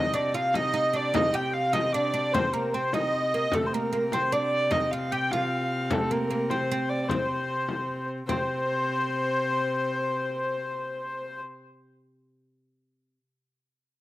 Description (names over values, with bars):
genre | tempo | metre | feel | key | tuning
medieval dance | 101 BPM (dotted quarters) | 6/8 | straight | C dorian | A4 = 440 Hz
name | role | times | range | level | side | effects
dark hurdy-gurdy | melody | 0.0-11.4 s | A4 to G5 | -27 LUFS | equal | slapback echo
mellow hollow tenor recorder | second line | 0.0-11.4 s | A4 to G5 | -34 LUFS | left 3 dB | slapback echo
oud | second line | 0.0-12.1 s | A3 to G4 | -33 LUFS | right 4 dB | none
rich viola da gamba | drone | 0.0-11.4 s | C3 | -33 LUFS | equal | none
frame drum | percussion | 0.5-8.5 s | none | -31 LUFS | left 4 dB | none
room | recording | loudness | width
light reverb | recorded outdoors, with no room sound | -24 LUFS | side -15 dB against mid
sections
0.0-8.3 A section; 8.3-10.6 B section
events
none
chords
none